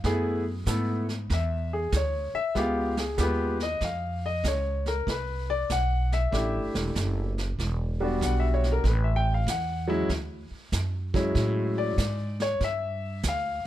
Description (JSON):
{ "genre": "jazz piano trio", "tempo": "96 BPM", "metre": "4/4", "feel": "swing 66% on 8ths", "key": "unclear", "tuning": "A4 = 439 Hz", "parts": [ { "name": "warm grand piano", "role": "melody", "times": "0.0-13.7 s", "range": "F#3 to G5", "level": "-28 LUFS", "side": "left 2 dB", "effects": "none" }, { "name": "upright bass", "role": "bass", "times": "0.0-13.6 s", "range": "E1 to A2", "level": "-28 LUFS", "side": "right 1 dB", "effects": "none" }, { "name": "vintage brush drum kit", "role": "drums", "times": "0.0-13.7 s", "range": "brushed snare drum, hi-hat, kick drum, snare drum", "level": "-34 LUFS", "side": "right 3 dB", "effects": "none" } ], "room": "little or no reverb", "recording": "close, detailed microphones", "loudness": "-25 LUFS", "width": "side -13 dB against mid", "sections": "0.0-13.7 A section", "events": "grand piano solo 0.0-13.7", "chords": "0.0 F#m11; 2.6 C#7#11; 5.1 C6; 7.6 Em9; 8.8 A5; 10.1 Dmaj9#11; 12.6 G5" }